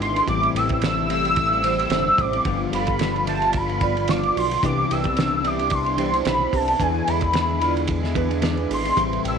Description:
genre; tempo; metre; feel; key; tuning
indie pop, bedroom pop; 110 BPM; 4/4; swing 55% on 16ths; unclear; A4 = 441 Hz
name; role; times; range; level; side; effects
warm velvety synth lead; melody; 0.0-9.4 s; G#5 to E6; -22 LUFS; equal; ensemble chorus, slapback echo
vibraphone with medium hard mallets; second line; 0.0-9.4 s; D4 to G5; -29 LUFS; right 13 dB; wide subtle chorus, slapback echo
semi-hollow electric guitar; accompaniment; 0.0-9.4 s; G2 to G#4; -27 LUFS; left 12 dB; analog chorus, vibrato effect
warm analog pad; sustained chords; 0.0-9.4 s; C3 to F4; -32 LUFS; equal; chorus
chorused synth bass; bass; 0.0-9.4 s; G1 to E2; -28 LUFS; equal; none
cloth-damped thuddy drum kit; drums; 0.0-9.4 s; hi-hat, kick drum, ride cymbal, snare drum; -28 LUFS; right 4 dB; none
warbly lo-fi synth keys; accompaniment; 4.6-9.4 s; C4 to D5; -32 LUFS; right 13 dB; chorus, cassette tape
room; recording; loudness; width
light reverb, small room reverb; 1960s-style stereo with parts hard left and right; -19 LUFS; side -6 dB against mid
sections
0.0-9.4 A section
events
none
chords
0.3 Am7; 2.5 G7; 4.6 Cmaj9; 6.8 E7

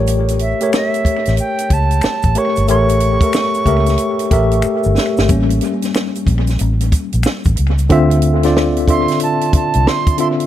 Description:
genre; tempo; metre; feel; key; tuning
R&B, neo-soul; 92 BPM; 4/4; swing 64% on 16ths; unclear; A4 = 440 Hz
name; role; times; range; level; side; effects
tine electric piano; accompaniment; 0.0-10.5 s; D3 to E5; -17 LUFS; left 2 dB; overdrive, fast stereo tremolo, analog delay
vintage muted fingered electric bass; bass; 0.0-9.9 s; G1 to D2; -15 LUFS; equal; none
compact cocktail drum kit; drums; 0.1-10.5 s; hi-hat, kick drum, snare drum; -18 LUFS; equal; analog delay
egg shaker and finger snaps; percussion; 0.1-7.9 s; none; -30 LUFS; left 4 dB; analog delay
reedy silver concert flute; melody; 0.4-4.6, 8.9-10.3 s; E5 to C#6; -20 LUFS; right 4 dB; analog delay
room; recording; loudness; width
small room ambience; echo-heavy mix; -12 LUFS; side -12 dB against mid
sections
0.0-5.3 A section; 5.3-7.9 B section; 7.9-10.5 C section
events
drum fill 4.6-5.3; tine electric piano solo 5.3-7.9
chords
0.0 A7b9; 7.9 Dm9

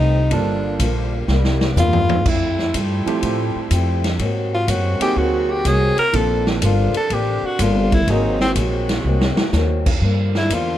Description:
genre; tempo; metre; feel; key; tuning
jazz, big band swing; 124 BPM; 4/4; swing 68% on 8ths; unclear; A4 = 440 Hz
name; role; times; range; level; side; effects
breathy tenor saxophone; melody; 0.0-10.8 s; C4 to Bb4; -20 LUFS; equal; none
picked old ladder-braced acoustic guitar; accompaniment; 0.0-10.8 s; F2 to C5; -26 LUFS; left 4 dB; none
warm saxophone section; sustained chords; 0.0-10.8 s; C3 to G4; -29 LUFS; right 2 dB; none
upright bass; bass; 0.0-10.8 s; G1 to A2; -19 LUFS; equal; none
warm grand piano; accompaniment; 0.3-9.4 s; F3 to A4; -25 LUFS; right 4 dB; none
swinging big-band drum kit; drums; 0.3-10.7 s; crash cymbal, hi-hat, kick drum, ride cymbal, snare drum, toms; -23 LUFS; equal; none
room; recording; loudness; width
light reverb; dark, warm production; -16 LUFS; side -12 dB against mid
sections
0.0-2.3 A section; 2.3-10.8 A section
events
tenor saxophone solo 0.0-10.8; drum fill 1.3-2.3, 9.1-9.5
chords
0.3 Gm7; 1.3 C7; 2.3 Fmaj9; 4.2 Ab9; 6.1 Bbmaj9; 8.1 Ab9; 10.0 Gm7

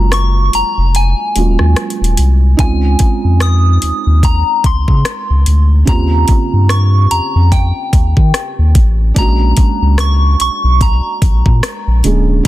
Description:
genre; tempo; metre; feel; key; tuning
contemporary R&B; 73 BPM; 4/4; swing 58% on 16ths; unclear; A4 = 440 Hz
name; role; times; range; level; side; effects
soft synth bell; melody; 0.0-12.0 s; G5 to Eb6; -18 LUFS; left 1 dB; chorus, phaser, digital delay
felt-muted upright piano; accompaniment; 0.0-12.5 s; Db3 to Ab4; -20 LUFS; right 5 dB; none
warm sub bass; bass; 0.0-12.5 s; D1 to Eb3; -10 LUFS; equal; none
smooth R&B drum kit; drums; 0.1-12.5 s; hi-hat, kick drum, rim click; -13 LUFS; equal; soft clipping on snare
room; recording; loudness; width
little or no reverb; dense, heavily limited modern master; -9 LUFS; side -16 dB against mid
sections
0.0-12.5 A section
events
break 0.0-2.6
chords
0.0 Ebm11; 2.6 Dbmaj9; 5.9 Eb13; 9.2 Bb7alt

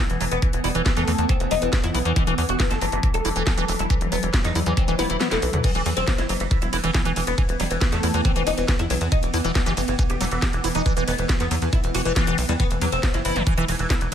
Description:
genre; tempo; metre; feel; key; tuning
psychedelic trance; 138 BPM; 4/4; straight; unclear; A4 = 440 Hz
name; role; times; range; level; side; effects
oud; melody; 0.0-14.1 s; E3 to A4; -26 LUFS; left 2 dB; phaser, sidechain pumping, dub echo
swarming drone; sustained chords; 0.0-14.1 s; E3 to D#4; -30 LUFS; right 1 dB; built-in reverb, sidechain pumping
liquid acid bass; riff; 0.0-14.1 s; E3 to E4; -28 LUFS; moving between left 6 dB and right 7 dB; phaser, auto-pan, sidechain pumping, tape echo
tight sequencer bass; bass; 0.1-14.1 s; E1 to E2; -26 LUFS; equal; none
drum and bass drum kit; drums; 0.1-14.1 s; crash cymbal, hi-hat, ride cymbal, snare drum, toms; -29 LUFS; equal; none
electronic kick drum; drums; 0.4-14.0 s; none; -22 LUFS; equal; none
swell; sound effects; 4.9-5.6 s; none; -36 LUFS; equal; none
room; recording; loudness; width
little or no reverb; none; -19 LUFS; side -9 dB against mid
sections
0.0-14.1 A section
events
swell 4.9-5.6; drum fill 5.0-5.6; kick drops out 5.2-5.6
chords
0.0 E5

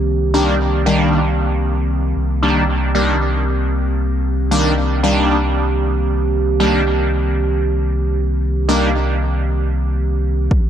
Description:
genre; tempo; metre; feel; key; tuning
dub techno; 115 BPM; 4/4; swing 54% on 16ths; C minor; A4 = 440 Hz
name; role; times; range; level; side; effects
warbly tape-like pad; sustained chords; 0.0-10.7 s; Eb3 to G4; -22 LUFS; right 2 dB; chorus, built-in reverb, sidechain pumping
warm sub bass; bass; 0.0-10.6 s; C2; -18 LUFS; equal; sidechain pumping
resonant sweep polysynth; stabs; 0.3-8.9 s; Eb3 to D4; -18 LUFS; equal; chorus, phaser, dub echo
electronic kick drum; drums; 10.5-10.6 s; none; -13 LUFS; equal; overdrive
room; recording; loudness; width
light reverb; dry, gritty hardware recording, transformer saturation; -15 LUFS; side -9 dB against mid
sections
0.0-10.5 A section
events
none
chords
0.0 Cm7

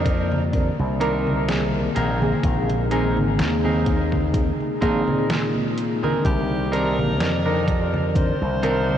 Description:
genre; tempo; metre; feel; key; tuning
vaporwave; 63 BPM; 4/4; swing 55% on 16ths; C minor; A4 = 440 Hz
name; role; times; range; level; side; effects
mellow FM electric piano; accompaniment; 0.0-9.0 s; Eb3 to D5; -25 LUFS; equal; tremolo, wide subtle chorus, cassette tape, ping-pong delay
warbly tape-like pad; sustained chords; 0.0-9.0 s; C3 to D5; -29 LUFS; left 1 dB; chorus, built-in reverb
clean electric guitar; riff; 0.0-9.0 s; C4 to Bb4; -28 LUFS; right 2 dB; wide subtle chorus, ping-pong delay
slap bass with an envelope filter; bass; 0.0-9.0 s; Ab1 to Bb2; -24 LUFS; equal; tube saturation
detuned 8-bit digital drum machine; drums; 0.1-9.0 s; congas, hi-hat, snare drum; -28 LUFS; equal; overdrive, vintage 12-bit sampler grit, studio reverb
electronic kick drum; drums; 0.1-8.4 s; none; -23 LUFS; equal; overdrive, vintage 12-bit sampler grit, studio reverb
breathy alto saxophone; melody; 6.2-9.0 s; G4 to C5; -28 LUFS; equal; tape echo
room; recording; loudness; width
wet huge ambient reverb, RT60 8.6 s; dreamy mix soaked in reverb, cassette tape; -19 LUFS; side -10 dB against mid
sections
0.0-9.0 A section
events
none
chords
0.0 Cm9; 2.0 Bb9sus4; 6.2 Cm9

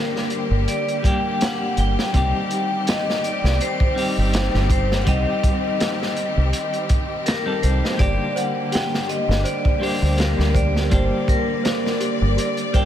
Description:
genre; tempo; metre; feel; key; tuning
trip hop; 82 BPM; 4/4; swing 55% on 16ths; G minor; A4 = 438 Hz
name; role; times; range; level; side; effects
vibraphone with medium hard mallets; melody; 0.0-12.9 s; Bb4 to G5; -25 LUFS; left 2 dB; tape echo
clean electric guitar; accompaniment; 0.0-12.9 s; D3 to A4; -27 LUFS; equal; tremolo, vintage 12-bit sampler grit, tape echo
clear symphonic string section; sustained chords; 0.0-12.9 s; D3 to D5; -27 LUFS; left 1 dB; vintage 12-bit sampler grit
crunchy breakbeat drum kit; drums; 0.2-12.9 s; hi-hat, kick drum, snare drum; -23 LUFS; equal; vintage 12-bit sampler grit
deep dub fingered electric bass; bass; 0.5-12.4 s; G1 to D2; -20 LUFS; equal; none
small celesta; arpeggios; 8.0-12.9 s; G4 to C5; -30 LUFS; right 1 dB; tape echo
room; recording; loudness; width
moderate huge ambient reverb, RT60 6.2 s; dreamy mix soaked in reverb; -18 LUFS; side -10 dB against mid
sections
0.0-12.9 A section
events
none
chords
0.0 Gm; 2.1 Cm; 8.0 Gm

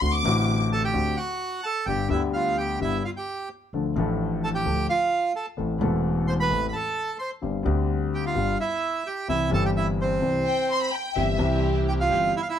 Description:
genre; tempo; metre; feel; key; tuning
tango; 129 BPM; 4/4; rubato; C major; A4 = 440 Hz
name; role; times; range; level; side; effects
warm studio violin section; second line; 0.0-0.6, 10.5-11.7 s; E5 to D6; -27 LUFS; left 3 dB; none
warm grand piano; accompaniment; 0.0-12.3 s; E1 to A4; -26 LUFS; left 4 dB; none
upright bass; bass; 0.0-12.3 s; E1 to D2; -29 LUFS; right 1 dB; none
bandoneon; melody; 0.7-12.6 s; C4 to C6; -25 LUFS; right 3 dB; none
dark studio string section; stabs; 11.2-12.3 s; C4 to G4; -31 LUFS; right 3 dB; none
room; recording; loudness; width
light reverb; none; -22 LUFS; side -9 dB against mid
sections
0.0-12.6 A section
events
none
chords
0.0 D7; 1.9 G; 3.7 Dm; 5.6 Am; 7.4 Gsus4; 8.4 G; 9.3 C

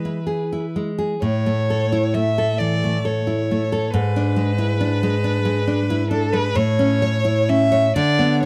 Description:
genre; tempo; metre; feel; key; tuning
romantic duo for violin and classical guitar; 41-47 BPM (dotted quarters); 6/8; rubato; A major; A4 = 440 Hz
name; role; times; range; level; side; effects
rich violin; melody; 0.0-8.5 s; A4 to E5; -25 LUFS; equal; none
nylon-string guitar; accompaniment; 0.0-8.5 s; G#2 to C#5; -21 LUFS; equal; none
room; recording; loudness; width
studio ambience; dry, close 1970s-style studio recording; -20 LUFS; mono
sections
0.0-8.5 A section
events
none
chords
0.0 E; 1.2 A; 3.9 E7/G#; 6.6 A

